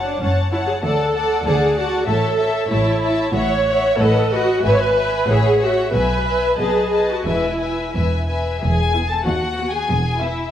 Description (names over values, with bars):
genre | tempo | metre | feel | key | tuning
quick classical-period movement for string orchestra | 94 BPM | 2/4 | rubato | A major, E major from 3.4 s | A4 = 440 Hz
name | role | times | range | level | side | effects
warm studio violin section | melody | 0.0-10.5 s | E5 to A5 | -26 LUFS | left 5 dB | none
warm studio violin section | second line | 0.0-10.5 s | E4 to F#5 | -23 LUFS | left 2 dB | none
warm studio cello section | bass | 0.0-10.4 s | D2 to B2 | -25 LUFS | right 1 dB | none
warm studio double bass section | bass | 0.0-10.4 s | E1 to D#2 | -24 LUFS | equal | none
warm studio viola section | accompaniment | 0.1-10.5 s | B3 to C#5 | -19 LUFS | right 1 dB | none
room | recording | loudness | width
moderate scoring stage reverb, RT60 1.8 s | vinyl crackle | -16 LUFS | side -10 dB against mid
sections
0.0-8.6 A section; 8.6-10.5 B section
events
none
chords
0.0 F#m; 0.8 D; 2.1 A; 3.4 F#m7/A; 4.0 B7/A; 4.6 E/G#; 5.3 F#m7/A; 5.9 E/B; 6.6 B7; 7.3 E; 9.3 B/D#; 9.9 E5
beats
0.20 | 0.83 1.45 | 2.08 2.70 | 3.35 3.98 | 4.64 5.28 | 5.94 6.59 | 7.27 7.95 | 8.62 9.26 | 9.89